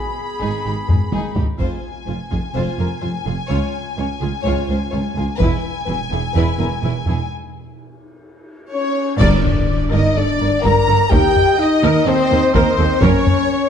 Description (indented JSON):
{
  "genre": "cinematic, epic orchestral film score",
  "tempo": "126 BPM",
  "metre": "4/4",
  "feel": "straight",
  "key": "F minor, G minor from 9.2 s",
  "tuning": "A4 = 440 Hz",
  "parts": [
    { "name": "rich symphonic violin section", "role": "melody", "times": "0.0-13.7 s", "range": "C5 to Cb6", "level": "-25 LUFS", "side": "left 4 dB", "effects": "none" },
    { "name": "warm French horn section", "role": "sustained chords", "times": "0.0-13.7 s", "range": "Ab3 to Bb4", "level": "-21 LUFS", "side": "left 4 dB", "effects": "none" },
    { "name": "dark trumpet section", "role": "stabs", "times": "0.0-1.4, 8.7-13.7 s", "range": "Ab4 to Bb5", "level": "-24 LUFS", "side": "right 3 dB", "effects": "none" },
    { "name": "clear chamber violin section", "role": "second line", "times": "0.4-13.7 s", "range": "G4 to Bb5", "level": "-26 LUFS", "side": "left 3 dB", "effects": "none" },
    { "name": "clear symphonic viola section", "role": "accompaniment", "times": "0.4-13.7 s", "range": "Eb4 to Eb5", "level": "-27 LUFS", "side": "right 2 dB", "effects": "none" },
    { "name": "clear symphonic double bass section", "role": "bass", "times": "0.4-13.1 s", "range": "E1 to Eb2", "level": "-23 LUFS", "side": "right 4 dB", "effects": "none" },
    { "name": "rich symphonic cello section", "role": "bass", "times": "0.4-13.1 s", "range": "Db2 to Ab2", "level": "-22 LUFS", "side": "right 2 dB", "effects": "none" },
    { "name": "taiko ensemble", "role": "drums", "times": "0.9-2.5, 5.4-6.3, 9.2-13.5 s", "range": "none", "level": "-20 LUFS", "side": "left 1 dB", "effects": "none" },
    { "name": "triangle, cymbal swell, clash cymbals and concert bass drum", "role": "percussion", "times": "1.6-2.5, 5.4-10.1 s", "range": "none", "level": "-27 LUFS", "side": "equal", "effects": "none" },
    { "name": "mellow hollow silver concert flute", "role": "second line", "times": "8.7-13.7 s", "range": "C5 to Bb5", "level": "-26 LUFS", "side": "left 2 dB", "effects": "none" },
    { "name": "timpani", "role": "percussion", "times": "9.2-9.9 s", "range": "G2", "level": "-24 LUFS", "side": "left 2 dB", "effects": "none" }
  ],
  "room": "moderate scoring stage reverb, RT60 1.9 s",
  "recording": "dark, warm production",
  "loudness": "-15 LUFS",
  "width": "side -8 dB against mid",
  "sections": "0.0-1.6 A section; 1.6-9.2 B section; 9.2-13.7 A section",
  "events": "drum fill 0.9-1.6, 8.5-9.2; break 7.3-9.2; band accent 9.2-9.7",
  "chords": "0.0 Abm; 1.6 Fm; 3.5 Db; 5.4 E; 7.3 N.C.; 9.2 Gm; 11.1 Eb; 13.0 F# (rootless)",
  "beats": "0.17 0.64 1.12 | 1.59 2.07 2.55 3.02 | 3.50 3.98 4.45 4.93 | 5.41 5.88 6.36 6.83 | 7.31 7.79 8.26 8.74 | 9.21 9.69 10.17 10.64 | 11.12 11.60 12.07 12.55 | 13.02 13.50"
}